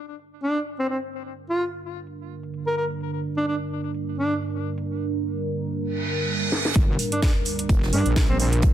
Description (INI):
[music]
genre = bass house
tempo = 128 BPM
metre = 4/4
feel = swing 55% on 16ths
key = G minor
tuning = A4 = 444 Hz
[part]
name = dark analog pad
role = sustained chords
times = 1.8-8.7 s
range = G3 to Bb4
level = -28 LUFS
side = right 2 dB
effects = chorus, phaser, sidechain pumping
[part]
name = house drum kit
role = drums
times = 0.1-8.7 s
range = hi-hat, snare drum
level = -28 LUFS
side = right 1 dB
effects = low-pass filter on hats, low-pass filter on snare, low-pass filter on room
[part]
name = warm alto saxophone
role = melody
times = 0.4-8.5 s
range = C4 to Bb4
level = -27 LUFS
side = equal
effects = ping-pong delay
[part]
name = reverse cymbal and sub drop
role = sound effects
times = 5.9-8.6 s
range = none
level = -30 LUFS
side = right 2 dB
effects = none
[part]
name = wobble bass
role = bass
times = 6.8-8.7 s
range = F1 to G2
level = -22 LUFS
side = equal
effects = chorus, sidechain pumping
[part]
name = electronic kick drum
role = drums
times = 6.8-8.7 s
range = none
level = -20 LUFS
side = equal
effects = none
[part]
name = unplugged drum kit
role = drums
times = 6.8-8.7 s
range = hi-hat, snare drum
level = -39 LUFS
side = right 4 dB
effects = none
[sound]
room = light reverb, small room ambience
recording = dense, heavily limited modern master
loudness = -22 LUFS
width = side -11 dB against mid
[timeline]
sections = 0.0-6.8 A section; 6.8-8.7 B section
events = filter sweep on analog synth pad 0.0-6.8; reverse cymbal 5.9-6.8; drum fill 6.5; drop 6.8-8.7; impact 6.8-8.6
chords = 0.0 Gm